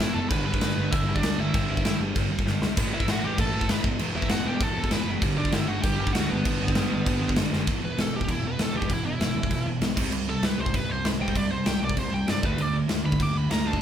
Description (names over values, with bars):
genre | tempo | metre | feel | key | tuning
punk rock | 196 BPM | 4/4 | straight | E minor | A4 = 443 Hz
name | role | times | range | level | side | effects
high-gain lead guitar | melody | 0.0-13.8 s | B3 to D6 | -31 LUFS | right 1 dB | distortion
sludgy distorted guitar | riff | 0.0-13.8 s | E2 to D4 | -28 LUFS | right 2 dB | overdrive
growling picked electric bass | bass | 0.0-13.8 s | E1 to G2 | -33 LUFS | equal | overdrive
big rock drum kit | drums | 0.0-13.8 s | crash cymbal, kick drum, snare drum, splash cymbal | -26 LUFS | left 1 dB | none
room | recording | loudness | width
light reverb | band playing live in one room | -23 LUFS | side -9 dB against mid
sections
0.0-7.7 A section; 7.7-13.8 B section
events
drum fill 2.5-2.8, 7.5; lead electric guitar solo 7.7-13.8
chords
0.3 G; 2.8 Em; 5.2 G; 7.7 E5; 10.0 C5; 12.4 D5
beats
0.00 | 0.31 0.61 0.92 1.23 | 1.54 1.84 2.15 2.46 | 2.77 3.07 3.38 3.69 | 3.99 4.30 4.61 4.92 | 5.22 5.53 5.83 6.14 | 6.45 6.75 7.06 7.37 | 7.67 7.98 8.29 8.59 | 8.90 9.21 9.52 9.82 | 10.13 10.44 10.74 11.05 | 11.36 11.66 11.97 12.28 | 12.58 12.89 13.20 13.50 | 13.81